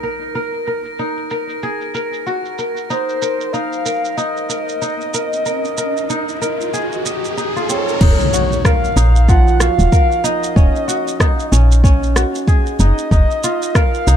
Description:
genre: organic downtempo.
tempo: 94 BPM.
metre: 4/4.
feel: swing 59% on 16ths.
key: Eb dorian.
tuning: A4 = 440 Hz.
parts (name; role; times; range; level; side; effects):
kora; arpeggios; 0.0-14.2 s; F3 to Eb5; -21 LUFS; equal; low-pass filter, digital delay.
deep house drum kit; drums; 0.0-14.2 s; crash cymbal, rim click, shaker; -23 LUFS; right 2 dB; low-pass filter on perc, low-pass filter on snare, low-pass filter on cymbals, low-pass filter on room.
impact and riser; sound effects; 0.0-10.6 s; none; -23 LUFS; equal; none.
drifting glass-harmonics texture; texture; 0.0-8.0 s; Bb4; -30 LUFS; right 4 dB; chorus, built-in reverb.
breathy flute-like synth lead; melody; 2.9-14.2 s; C5 to Gb5; -21 LUFS; left 1 dB; lush chorus, digital delay.
woody FM bass; bass; 8.0-14.2 s; Eb1 to C2; -12 LUFS; equal; tube saturation, sidechain pumping.
electronic kick drum; drums; 8.0-13.9 s; none; -13 LUFS; equal; none.
room: little or no reverb.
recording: dark, warm production.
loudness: -14 LUFS.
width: side -9 dB against mid.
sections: 0.0-8.0 A section; 8.0-14.2 B section.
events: impact 0.0-0.3, 8.0-10.6; riser 4.6-8.0.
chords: 0.0 Ebm; 2.9 Fm7 (rootless); 8.0 Ebm7; 13.1 Fm7.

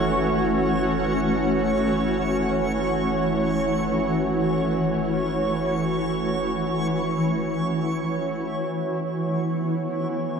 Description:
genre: ambient.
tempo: free time.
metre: none.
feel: none.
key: unclear.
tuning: A4 = 438 Hz.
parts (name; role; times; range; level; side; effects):
shimmering ambient pad; sustained chords; 0.0-10.4 s; E3 to C#5; -22 LUFS; equal; chorus, built-in reverb.
felt-muted upright piano; arpeggios; 0.0-10.4 s; none; barely audible; none; none.
warm sub bass; bass; 0.0-8.6 s; F#1; -38 LUFS; equal; none.
backwards swelling texture; texture; 0.0-10.4 s; C#6; -35 LUFS; right 1 dB; built-in reverb.
room: wet concert hall reverb, RT60 2.0 s.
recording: dark, warm production.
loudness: -21 LUFS.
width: side -6 dB against mid.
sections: 0.0-8.6 A section; 8.6-10.4 B section.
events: fade-out on sub bass 0.0-8.6.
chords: 0.0 F#m7; 8.6 Bmadd9.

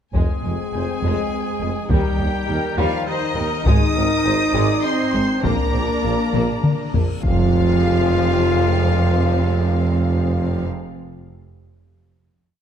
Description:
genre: cinematic, epic orchestral film score.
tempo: 102 BPM.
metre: 3/4.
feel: straight.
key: F dorian.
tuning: A4 = 440 Hz.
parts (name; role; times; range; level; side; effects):
warm symphonic violin section; second line; 0.1-10.6 s; G3 to Eb4; -28 LUFS; left 4 dB; none.
clear trombone section; sustained chords; 0.1-10.6 s; Eb3 to Eb4; -27 LUFS; right 1 dB; none.
mellow French horn section; sustained chords; 0.1-10.6 s; Eb3 to F4; -26 LUFS; left 3 dB; none.
clear trumpet; stabs; 0.1-10.6 s; Eb4 to Eb5; -29 LUFS; equal; none.
rich symphonic cello section; bass; 0.1-10.6 s; Eb2 to Bb2; -25 LUFS; right 2 dB; none.
warm symphonic double bass section; bass; 0.1-10.6 s; F1 to Eb2; -24 LUFS; right 3 dB; none.
warm tuba; bass; 0.1-10.6 s; F1 to Eb2; -28 LUFS; right 3 dB; none.
taiko ensemble; drums; 0.1-7.2 s; none; -21 LUFS; left 1 dB; none.
bright symphonic violin section; melody; 0.2-10.6 s; Eb5 to Eb6; -28 LUFS; left 4 dB; none.
warm symphonic viola section; accompaniment; 0.7-10.6 s; C3 to Eb5; -30 LUFS; equal; none.
reverse cymbal and impact; sound effects; 7.2-9.0 s; none; -26 LUFS; left 1 dB; none.
room: moderate scoring stage reverb, RT60 1.7 s.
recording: dark, warm production.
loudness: -17 LUFS.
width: side -8 dB against mid.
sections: 0.1-7.2 theme; 7.2-10.8 final chord.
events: drum fill 6.3-7.2; reverse cymbal 7.2; impact 7.2-9.0.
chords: 0.1 Fm; 1.9 Eb; 3.7 Ab; 5.4 Bb; 7.2 Fm.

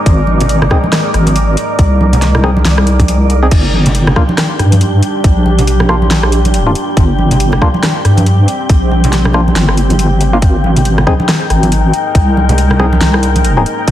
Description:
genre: deep dubstep.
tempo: 139 BPM.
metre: 4/4.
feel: swing 59% on 16ths, half-time.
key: G phrygian.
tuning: A4 = 439 Hz.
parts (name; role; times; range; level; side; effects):
deep dark ambient pad; sustained chords; 0.0-13.9 s; G3 to Bb4; -18 LUFS; equal; chorus, built-in reverb.
wind-like tuned noise texture; texture; 0.0-13.9 s; D5 to G5; -21 LUFS; left 3 dB; built-in reverb.
deep soft wobble bass; bass; 0.1-13.9 s; G1 to G2; -11 LUFS; equal; chorus.
deep house drum kit; drums; 0.1-13.9 s; crash cymbal, hi-hat, rim click, snare drum; -17 LUFS; equal; overdrive, studio reverb.
electronic kick drum; drums; 0.1-13.9 s; none; -10 LUFS; equal; overdrive, studio reverb.
congas; percussion; 0.3-13.4 s; none; -18 LUFS; right 2 dB; none.
percussive organ stab; stabs; 0.7-13.6 s; Bb3 to Ab4; -20 LUFS; left 1 dB; chorus, dub echo.
room: light reverb, digital ambience.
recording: dense, heavily limited modern master, vinyl crackle.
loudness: -8 LUFS.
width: side -12 dB against mid.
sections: 0.0-13.9 A section.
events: none.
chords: 0.0 Ab; 3.5 Gm; 10.4 Ab.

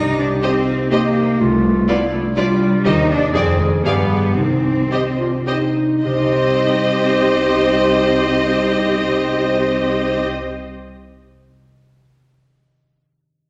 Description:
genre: cinematic.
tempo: 104-124 BPM.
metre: 3/4.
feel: straight.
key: C minor.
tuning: A4 = 439 Hz.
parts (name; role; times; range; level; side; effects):
warm clarinet; second line; 0.0-10.2 s; Eb4 to Ab4; -26 LUFS; equal; none.
concert harp; arpeggios; 0.0-11.0 s; F2 to Eb5; -26 LUFS; equal; none.
rich studio cello section; bass; 0.0-10.2 s; G3 to Eb4; -23 LUFS; equal; none.
rich studio double bass section; bass; 0.0-10.2 s; C2 to G2; -27 LUFS; equal; none.
rich studio violin section; melody; 0.4-10.2 s; D5 to F5; -27 LUFS; equal; none.
clear studio violin section; second line; 0.4-10.3 s; B4 to D5; -30 LUFS; equal; none.
bright studio viola section; accompaniment; 0.4-10.2 s; F4 to Ab4; -26 LUFS; equal; none.
warm French horn section; sustained chords; 0.4-10.3 s; Eb4 to Eb5; -24 LUFS; equal; none.
room: wet scoring stage reverb, RT60 1.6 s.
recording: none.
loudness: -17 LUFS.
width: mono.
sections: 0.0-6.0 A section; 6.0-9.5 B section.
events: slowing down 2.1-6.0.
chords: 0.0 Cm; 1.4 Bdim/C; 2.9 Cm/Eb; 3.3 Ddim/F; 3.9 G7b9; 4.4 Cm.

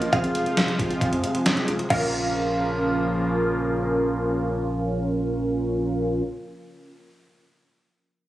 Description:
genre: synth-pop.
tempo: 135 BPM.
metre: 4/4.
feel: straight.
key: Bb minor.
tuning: A4 = 440 Hz.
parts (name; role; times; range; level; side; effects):
direct-recorded clean electric guitar; melody; 0.0-6.3 s; Eb5 to F5; -28 LUFS; right 1 dB; low-pass filter.
funky polysynth comp; accompaniment; 0.0-6.2 s; C4 to Bb4; -26 LUFS; right 1 dB; chorus, phaser, low-pass filter.
sweeping resonant pad; sustained chords; 0.0-6.2 s; C3 to F4; -29 LUFS; equal; chorus, low-pass filter.
warbly dusty pluck; arpeggios; 0.0-6.4 s; F3 to F4; -32 LUFS; left 1 dB; chorus, phaser, low-pass filter, digital delay.
gated 80s digital drum machine; drums; 0.0-2.0 s; crash cymbal, hi-hat, kick drum, snare drum; -26 LUFS; equal; gated reverb, gated reverb snare, overdrive.
round analog bass; bass; 0.1-6.2 s; F1 to F2; -31 LUFS; equal; none.
room: moderate plate reverb, RT60 1.9 s.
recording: recorded on a phone in the room, studio ambience.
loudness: -22 LUFS.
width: side -14 dB against mid.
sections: 0.0-1.9 A section; 1.9-5.5 B section.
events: filter sweep 0.0-1.9.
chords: 0.1 Fm; 1.9 Bbm.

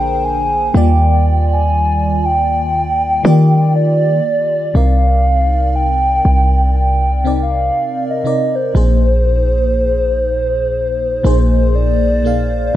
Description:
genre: contemporary R&B.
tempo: 60 BPM.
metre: 4/4.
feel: swing 58% on 16ths.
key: C minor.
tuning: A4 = 441 Hz.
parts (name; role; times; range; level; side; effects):
hollow clarinet-like synth lead; melody; 0.0-12.8 s; C5 to Ab5; -16 LUFS; equal; chorus, digital delay.
FM electric piano with soft pad layer; accompaniment; 0.0-12.8 s; Bb2 to F5; -20 LUFS; left 1 dB; chorus, phaser.
warm 808-style bass; bass; 0.0-12.7 s; Bb1 to Eb3; -14 LUFS; equal; none.
room: light reverb.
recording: dark, warm production.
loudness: -12 LUFS.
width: side -13 dB against mid.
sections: 0.0-4.7 A section; 4.7-12.8 B section.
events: none.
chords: 0.0 Bb7; 0.7 Ebmaj7; 4.7 Cm7; 8.7 Bb9sus4.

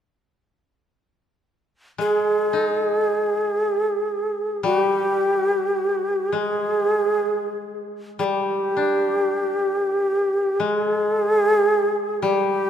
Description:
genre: japanese traditional, Japanese chamber music.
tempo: free time.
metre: none.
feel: none.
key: unclear.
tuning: A4 = 440 Hz.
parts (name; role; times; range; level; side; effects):
breathy mellow shakuhachi; melody; 2.0-12.7 s; G4 to Ab4; -20 LUFS; right 1 dB; none.
koto; accompaniment; 2.0-12.7 s; G3 to Eb4; -27 LUFS; left 4 dB; none.
room: moderate church reverb, RT60 2.7 s.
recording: none.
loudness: -19 LUFS.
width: side -9 dB against mid.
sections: 0.5-12.7 A section.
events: none.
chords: none.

